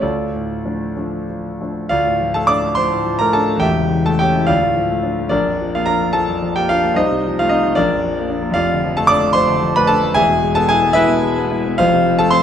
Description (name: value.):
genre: classical, romantic character piece for solo piano.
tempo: 62-77 BPM (dotted quarters).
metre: 6/8.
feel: rubato.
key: D minor.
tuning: A4 = 436 Hz.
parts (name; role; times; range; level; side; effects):
warm concert grand piano; solo; 0.0-12.4 s; E1 to D6; -14 LUFS; equal; none.
room: moderate recital hall reverb, RT60 1.4 s.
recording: none.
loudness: -14 LUFS.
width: side -9 dB against mid.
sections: 0.0-1.9 A section; 1.9-12.4 B section.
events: none.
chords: 0.0 Dm; 3.6 A7/E; 4.5 Dm; 5.3 Bb; 7.0 F7/C; 7.8 Bb; 8.6 Dm/F; 10.2 E; 11.8 F.